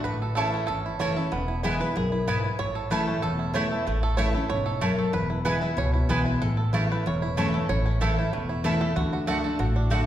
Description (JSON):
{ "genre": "bluegrass", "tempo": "189 BPM", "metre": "4/4", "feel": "straight", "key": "A major", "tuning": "A4 = 440 Hz", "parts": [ { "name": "bluegrass banjo", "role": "melody", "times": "0.0-10.1 s", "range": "A3 to C#5", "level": "-31 LUFS", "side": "right 4 dB", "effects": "none" }, { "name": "picked steel-string acoustic guitar", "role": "accompaniment", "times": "0.0-10.1 s", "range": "E2 to F#4", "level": "-26 LUFS", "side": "left 1 dB", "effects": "none" }, { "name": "upright bass", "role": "bass", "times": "0.0-10.1 s", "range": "E1 to D2", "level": "-30 LUFS", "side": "equal", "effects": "none" }, { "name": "mandolin", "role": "stabs", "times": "0.4-10.0 s", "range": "A3 to A5", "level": "-32 LUFS", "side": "right 2 dB", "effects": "none" } ], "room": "wet recital hall reverb, RT60 1.5 s", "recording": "recorded in a church or concert hall", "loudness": "-23 LUFS", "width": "side -11 dB against mid", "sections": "0.0-7.7 A section; 7.7-10.1 A section", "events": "five-string banjo solo 0.0-10.1", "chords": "0.1 A; 1.3 E; 2.6 A; 5.1 E; 6.4 A; 9.0 D", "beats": "| 0.05 0.37 0.69 1.01 | 1.32 1.64 1.96 2.28 | 2.60 2.91 3.23 3.55 | 3.87 4.18 4.50 4.82 | 5.14 5.46 5.77 6.09 | 6.41 6.73 7.05 7.37 | 7.68 8.00 8.32 8.64 | 8.96 9.27 9.59 9.91" }